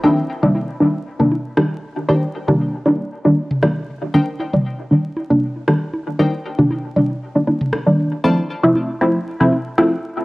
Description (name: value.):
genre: dub techno.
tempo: 117 BPM.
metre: 4/4.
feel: swing 54% on 16ths.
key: C dorian.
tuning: A4 = 440 Hz.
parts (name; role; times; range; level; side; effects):
wavetable chord stab; riff; 0.0-8.4 s; Eb4 to A5; -28 LUFS; left 3 dB; dub echo.
filtered dub chord stab; stabs; 0.0-10.0 s; Eb3 to E4; -16 LUFS; equal; chorus, phaser, dub echo.
electronic toms and bongos; percussion; 0.4-9.6 s; none; -24 LUFS; equal; cassette tape, dub echo.
electronic rim click; drums; 1.6-9.9 s; none; -26 LUFS; equal; cassette tape, dub echo.
room: moderate spring reverb, RT60 1.9 s, digital ambience.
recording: home recording on cassette, vinyl crackle.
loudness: -15 LUFS.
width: side -21 dB against mid.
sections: 0.0-10.2 A section.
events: none.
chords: 0.0 Cm7 (rootless); 8.2 Dm7 (rootless).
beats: | 0.04 0.55 1.06 1.57 | 2.09 2.60 3.11 3.63 | 4.14 4.65 5.17 5.68 | 6.19 6.70 7.22 7.73 | 8.24 8.75 9.27 9.78.